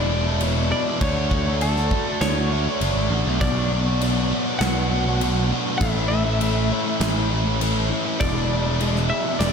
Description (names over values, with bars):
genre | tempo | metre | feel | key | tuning
rock, shoegaze and dream pop | 100 BPM | 4/4 | straight | E mixolydian | A4 = 440 Hz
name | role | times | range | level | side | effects
twelve-string electric guitar | melody | 0.0-9.5 s | A4 to F#5 | -28 LUFS | left 1 dB | spring reverb, slapback echo
biting overdriven guitar | riff | 0.0-9.5 s | E2 to F#4 | -23 LUFS | equal | lush chorus
modern bright picked electric bass | bass | 0.0-9.5 s | E1 to D2 | -23 LUFS | equal | none
gated 80s drum kit | drums | 0.4-9.5 s | crash cymbal, kick drum, snare drum | -29 LUFS | equal | none
room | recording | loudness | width
light reverb | none | -19 LUFS | side -6 dB against mid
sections
0.0-9.5 A section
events
none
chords
0.0 E7; 1.0 Dmaj7; 3.4 Bm; 5.8 A; 8.2 E7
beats
0.42 | 1.01 1.61 2.21 2.81 | 3.41 4.01 4.61 5.21 | 5.81 6.41 7.01 7.61 | 8.20 8.80 9.40